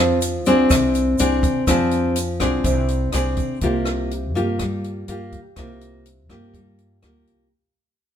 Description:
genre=bossa nova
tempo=123 BPM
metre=4/4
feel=straight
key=unclear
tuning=A4 = 438 Hz
part: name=nylon-string guitar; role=accompaniment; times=0.0-7.5 s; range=C3 to Ab4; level=-19 LUFS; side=left 1 dB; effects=none
part: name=upright bass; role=bass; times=0.0-7.5 s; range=C2 to G2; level=-26 LUFS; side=equal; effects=none
part: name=compact cocktail drum kit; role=drums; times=0.2-7.4 s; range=hi-hat, kick drum, rim click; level=-24 LUFS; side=equal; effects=none
part: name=egg shaker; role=percussion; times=0.2-3.6 s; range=none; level=-35 LUFS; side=right 6 dB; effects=none
room=moderate large studio reverb, RT60 1.2 s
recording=band playing live in one room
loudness=-17 LUFS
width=side -9 dB against mid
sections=0.0-7.5 A section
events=fade-out 0.0-7.5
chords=0.0 Fm6; 3.6 C7sus4

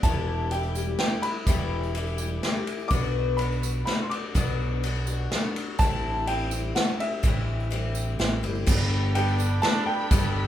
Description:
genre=indie folk with a building arrangement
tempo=125 BPM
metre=3/4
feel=straight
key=E minor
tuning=A4 = 440 Hz
part: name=clear upright piano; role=melody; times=0.0-10.5 s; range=E5 to D6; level=-31 LUFS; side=equal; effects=none
part: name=picked twelve-string acoustic guitar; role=accompaniment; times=0.0-10.5 s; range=E2 to A4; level=-32 LUFS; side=left 6 dB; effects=none
part: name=fingered electric bass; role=bass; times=0.0-10.5 s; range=E1 to B1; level=-28 LUFS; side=right 1 dB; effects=none
part: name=unplugged drum kit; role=drums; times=0.0-10.2 s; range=crash cymbal, kick drum, ride cymbal, snare drum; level=-27 LUFS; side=equal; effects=none
part: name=tambourine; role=percussion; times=0.0-10.3 s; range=none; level=-42 LUFS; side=right 8 dB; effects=none
part: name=dark chamber string section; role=sustained chords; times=8.7-10.5 s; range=A4 to B5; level=-35 LUFS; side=equal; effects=none
part: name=warm trumpet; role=second line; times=9.1-10.5 s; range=D4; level=-32 LUFS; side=right 5 dB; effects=none
room=moderate large studio reverb, RT60 0.9 s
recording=band playing live in one room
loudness=-23 LUFS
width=side -11 dB against mid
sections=0.0-8.7 A section; 8.7-10.5 A section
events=none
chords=0.0 Em; 2.9 Bm; 5.8 Am7; 8.7 Gadd9

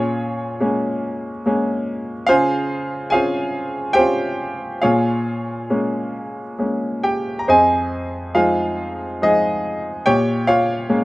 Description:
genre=classical, lyrical solo piano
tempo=71 BPM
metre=3/4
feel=rubato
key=unclear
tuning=A4 = 442 Hz
part: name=bright grand piano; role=solo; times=0.0-11.0 s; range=F2 to Bb5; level=-17 LUFS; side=equal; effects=none
room=light reverb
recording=close, detailed microphones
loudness=-17 LUFS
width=side -18 dB against mid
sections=0.0-11.0 A section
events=none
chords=0.0 Bbm7; 2.3 Dbmaj7; 4.8 Bbm7; 7.5 Fm7; 10.1 Bbm7

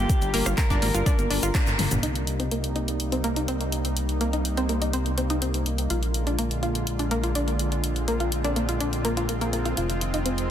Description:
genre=progressive house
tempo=124 BPM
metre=4/4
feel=straight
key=C minor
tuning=A4 = 437 Hz
part: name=electric guitar at the edge of break-up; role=melody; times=0.0-1.9 s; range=G4 to Bb4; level=-32 LUFS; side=left 2 dB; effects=vintage 12-bit sampler grit, sidechain pumping, digital delay
part: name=supersaw pad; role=sustained chords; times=0.0-10.5 s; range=C3 to F4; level=-31 LUFS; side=equal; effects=sidechain pumping
part: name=fat analog bass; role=bass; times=0.0-10.5 s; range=F1 to C2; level=-28 LUFS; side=equal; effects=sidechain pumping
part: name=deep house drum kit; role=drums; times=0.1-10.5 s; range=handclaps, hi-hat, toms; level=-30 LUFS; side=left 2 dB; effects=sidechain pumping on hats, sidechain pumping on toms
part: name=electronic kick drum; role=drums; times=0.1-1.6 s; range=none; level=-23 LUFS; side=equal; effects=none
part: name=cabasa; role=percussion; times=0.1-2.0 s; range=none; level=-35 LUFS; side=left 3 dB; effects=none
part: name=analog pluck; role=arpeggios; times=0.3-10.4 s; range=Bb3 to F4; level=-28 LUFS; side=left 1 dB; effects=chorus, sidechain pumping, digital delay
part: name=electronic rim click and congas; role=percussion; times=0.5-2.0 s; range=none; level=-36 LUFS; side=right 4 dB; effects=overdrive, sidechain pumping on snare, sidechain pumping on perc
room=light reverb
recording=dense, heavily limited modern master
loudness=-23 LUFS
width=side -10 dB against mid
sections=0.0-2.0 A section; 2.0-10.5 B section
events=band accent 1.5; drum fill 1.8; filter sweep on synth pluck 2.0-10.5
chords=0.0 Gm7; 2.0 Cm7; 5.9 Bb7; 9.8 Fm7

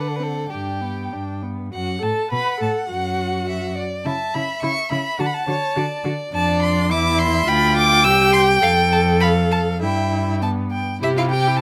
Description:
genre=quick classical-period movement for string quartet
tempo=103 BPM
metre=2/4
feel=straight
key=D major, C major from 6.3 s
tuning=A4 = 440 Hz
part: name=rich violin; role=melody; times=0.0-11.6 s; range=E5 to E6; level=-24 LUFS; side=equal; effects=none
part: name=warm violin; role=second line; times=0.0-11.6 s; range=E4 to A5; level=-25 LUFS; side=equal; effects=none
part: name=warm viola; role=accompaniment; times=0.0-11.6 s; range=B3 to B4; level=-26 LUFS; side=equal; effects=none
part: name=rich cello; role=bass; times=0.0-11.6 s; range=C2 to D3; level=-25 LUFS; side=equal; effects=none
room=light reverb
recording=close, detailed microphones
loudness=-20 LUFS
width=mono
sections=0.0-1.7 A section; 1.7-11.0 B section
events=none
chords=0.0 D7; 0.5 G; 1.7 F#madd11; 2.9 Dadd9/F#; 4.1 C#m7; 5.2 D; 6.3 Dm/F; 6.9 C/E; 7.5 Bdim/D; 8.1 C; 8.6 F; 9.8 Em/G; 10.4 G; 11.0 C

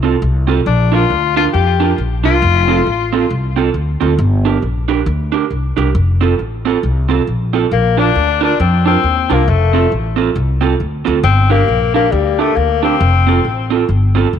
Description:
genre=ska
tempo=136 BPM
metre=4/4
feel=swing 61% on 8ths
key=Bb major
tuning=A4 = 441 Hz
part: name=electric guitar through a small old amp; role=accompaniment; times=0.0-14.3 s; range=C4 to Bb4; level=-17 LUFS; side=right 9 dB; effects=none
part: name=upright bass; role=bass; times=0.0-14.4 s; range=F1 to F2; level=-15 LUFS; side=left 1 dB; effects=none
part: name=warm tenor saxophone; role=melody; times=0.7-3.1, 7.7-13.7 s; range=G3 to G4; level=-16 LUFS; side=left 11 dB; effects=tape echo
room=light reverb, small room ambience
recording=1960s-style stereo with parts hard left and right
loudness=-12 LUFS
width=side -8 dB against mid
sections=0.0-7.7 A section; 7.7-14.4 A section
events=none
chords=0.0 F; 0.7 Bb; 2.4 F; 4.2 Gm; 5.9 F; 7.7 Bb; 9.5 F; 11.2 Gm; 13.0 F

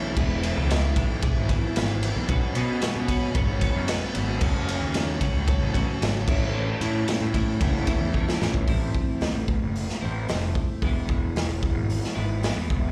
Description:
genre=indie rock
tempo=113 BPM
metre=4/4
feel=straight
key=E major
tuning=A4 = 440 Hz
part: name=twelve-string electric guitar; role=riff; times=0.0-12.9 s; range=F#2 to E4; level=-32 LUFS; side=equal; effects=double-tracked, slapback echo
part: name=fuzz picked electric bass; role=bass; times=0.0-12.9 s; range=E1 to B2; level=-30 LUFS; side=equal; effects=overdrive
part: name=raw garage drum kit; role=drums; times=0.2-12.8 s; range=crash cymbal, hi-hat, kick drum, ride cymbal, snare drum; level=-28 LUFS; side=equal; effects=none
room=little or no reverb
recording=live gig heard through the venue's PA, club reverb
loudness=-25 LUFS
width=mono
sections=0.0-8.7 A section; 8.7-12.9 B section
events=drum fill 8.1-8.7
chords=0.2 E; 2.3 Bsus2; 4.4 F#m; 6.3 A; 8.7 Am; 10.8 E

